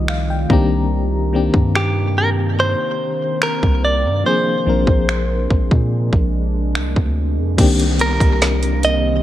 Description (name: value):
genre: contemporary R&B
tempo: 72 BPM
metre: 4/4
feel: straight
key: C minor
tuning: A4 = 440 Hz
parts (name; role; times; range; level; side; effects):
- FM electric piano with tremolo; accompaniment; 0.0-9.2 s; Eb3 to Bb5; -22 LUFS; left 4 dB; none
- deep dark ambient pad; sustained chords; 0.0-9.2 s; C3 to F4; -26 LUFS; right 2 dB; chorus, built-in reverb, sidechain pumping
- long sustained 808-style bass; bass; 0.0-9.2 s; Bb1 to Bb2; -19 LUFS; equal; none
- trap drum kit; drums; 0.1-9.0 s; crash cymbal, finger snaps, hi-hat, kick drum, snare drum; -18 LUFS; equal; vintage 12-bit sampler grit
- direct-recorded clean electric guitar; melody; 1.8-9.2 s; G4 to Eb5; -20 LUFS; right 1 dB; spring reverb, digital delay
- downlifter; sound effects; 7.6-9.2 s; none; -28 LUFS; left 1 dB; none
room: digital ambience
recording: none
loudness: -15 LUFS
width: side -13 dB against mid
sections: 0.0-7.6 A section; 7.6-9.2 B section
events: FM electric piano fill 0.0-0.9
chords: 0.0 F9; 0.5 Cm9; 4.3 Bb9; 7.6 Cm9